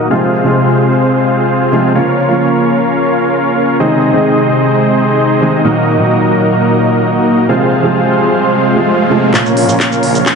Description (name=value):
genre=EDM, festival progressive house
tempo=130 BPM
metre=4/4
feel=straight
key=Bb minor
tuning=A4 = 441 Hz
part: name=warm grand piano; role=accompaniment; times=0.0-10.4 s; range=Bb2 to Db5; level=-15 LUFS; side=right 1 dB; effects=sidechain pumping, ping-pong delay
part: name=lush unison pad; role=sustained chords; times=0.0-10.4 s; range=Bb2 to Db5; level=-15 LUFS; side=equal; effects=chorus, sidechain pumping
part: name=dense compressed supersaw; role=riff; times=0.0-10.4 s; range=Bb3 to F5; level=-13 LUFS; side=equal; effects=sidechain pumping, low-pass filter, ping-pong delay
part: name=riser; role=sound effects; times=7.3-10.4 s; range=none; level=-20 LUFS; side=right 3 dB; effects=none
part: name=electronic kick drum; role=drums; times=9.3-10.4 s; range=none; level=-19 LUFS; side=left 1 dB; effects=high-pass filter on kick
part: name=pop drum kit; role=drums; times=9.3-10.4 s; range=handclaps, hi-hat, shaker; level=-15 LUFS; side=equal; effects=low-pass filter on snare, low-pass filter on perc, low-pass filter on hats
part: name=detuned saw bass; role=bass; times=9.6-10.2 s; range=Bb1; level=-21 LUFS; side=left 1 dB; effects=none
room=moderate lush hall reverb, RT60 2.1 s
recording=nothing above 10.9 kHz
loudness=-9 LUFS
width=side -5 dB against mid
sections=0.0-9.3 A section; 9.3-10.4 B section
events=filter sweep on analog synth pad 0.0-9.3, 9.3-10.4; riser 7.3-9.3; build-up 9.3-10.4; drum fill 9.3-10.4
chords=0.1 Fm; 2.0 Bbm; 3.8 Ab; 5.6 Ebm; 7.5 Fm; 9.3 Bbm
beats=| 0.11 0.57 1.03 1.49 | 1.95 2.42 2.88 3.34 | 3.80 4.26 4.72 5.18 | 5.65 6.11 6.57 7.03 | 7.49 7.95 8.41 8.88 | 9.34 9.80 10.26